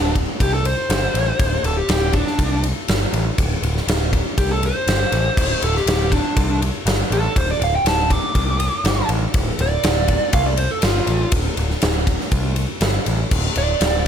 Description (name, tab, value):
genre	blues rock power trio and southern rock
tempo	121 BPM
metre	4/4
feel	straight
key	D minor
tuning	A4 = 441 Hz
part	dark smooth lead guitar	melody	0.0-14.1 s	D4 to D6	-22 LUFS	right 1 dB	overdrive
part	growling picked electric bass	bass	0.0-14.1 s	D1 to C2	-21 LUFS	equal	overdrive
part	big rock drum kit	drums	0.2-13.9 s	crash cymbal, kick drum, ride cymbal, snare drum	-20 LUFS	equal	none
room	little or no reverb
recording	none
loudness	-16 LUFS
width	side -8 dB against mid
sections	0.0-14.1 A section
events	lead electric guitar solo 0.0-14.1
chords	none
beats	0.40 0.90 | 1.40 1.89 2.39 2.89 | 3.38 3.88 4.38 4.87 | 5.37 5.87 6.36 6.86 | 7.36 7.85 8.35 8.85 | 9.34 9.84 10.34 10.83 | 11.33 11.83 12.32 12.82 | 13.32 13.82